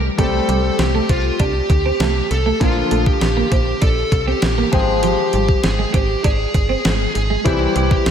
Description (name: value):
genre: 1980s-style pop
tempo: 99 BPM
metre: 4/4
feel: straight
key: unclear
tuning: A4 = 440 Hz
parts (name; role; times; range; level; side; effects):
- clear concert grand piano; accompaniment; 0.0-8.1 s; D3 to G5; -23 LUFS; left 4 dB; none
- slap-like FM bass; bass; 0.0-8.1 s; G1 to D2; -21 LUFS; equal; none
- smooth overdriven lead guitar; melody; 0.2-8.1 s; E4 to A4; -21 LUFS; right 1 dB; tape echo
- twelve-string electric guitar; riff; 0.2-8.1 s; F3 to D4; -23 LUFS; right 4 dB; wide subtle chorus
- clean 12-bit digital drum machine; drums; 0.2-8.1 s; hi-hat, kick drum, snare drum; -19 LUFS; equal; none
room: moderate lush hall reverb, RT60 1.8 s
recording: dreamy mix soaked in reverb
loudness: -14 LUFS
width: side -8 dB against mid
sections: 0.0-8.1 A section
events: none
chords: 0.2 Am7/C; 2.6 Bb; 4.7 Fmadd9/Ab; 7.5 C